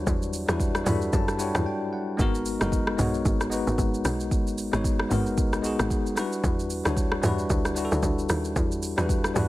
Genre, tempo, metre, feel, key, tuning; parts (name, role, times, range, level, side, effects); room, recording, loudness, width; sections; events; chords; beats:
amapiano; 113 BPM; 4/4; swing 58% on 16ths; A4 = 441 Hz
bell-like tine electric piano; accompaniment; 0.0-9.5 s; F#3 to B5; -28 LUFS; left 2 dB; medium stereo tremolo
tight log drum bass; bass; 0.0-9.5 s; F#1 to F#2; -28 LUFS; equal
afro-pop drum kit; drums; 0.1-9.5 s; hi-hat, kick drum, rim click, shaker, toms; -27 LUFS; equal
little or no reverb; -23 LUFS; side -17 dB against mid
0.0-9.5 A section
tine electric piano fill 0.6-2.2; break 1.7-2.2
0.0 Em9; 2.2 G#m9; 6.2 Em9
| 0.07 0.60 1.13 1.66 | 2.19 2.72 3.25 3.78 | 4.31 4.84 5.38 5.91 | 6.44 6.97 7.50 8.03 | 8.56 9.09